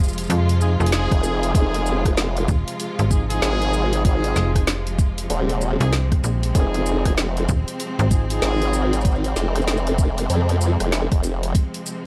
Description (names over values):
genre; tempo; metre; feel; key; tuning
glitch hop; 96 BPM; 4/4; swing 62% on 16ths; F minor; A4 = 439 Hz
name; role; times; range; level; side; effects
clear studio string section; sustained chords; 0.0-12.1 s; C3 to F4; -31 LUFS; equal; sidechain pumping
slap-like FM bass; bass; 0.0-8.4 s; Eb1 to F2; -23 LUFS; equal; tube saturation
drum and bass drum kit; drums; 0.0-12.0 s; hi-hat, rim click, shaker, snare drum; -29 LUFS; equal; overdrive, studio reverb
mellow horn section; stabs; 0.6-9.0 s; C4 to Ab4; -29 LUFS; equal; sidechain pumping, delay
formant-sweep wobble bass; bass; 1.1-11.5 s; Eb1 to F2; -24 LUFS; equal; chorus
electronic kick drum; drums; 1.1-11.7 s; none; -21 LUFS; equal; studio reverb
room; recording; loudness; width
little or no reverb; vinyl crackle; -20 LUFS; mono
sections
0.0-12.1 A section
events
none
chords
0.0 Fm7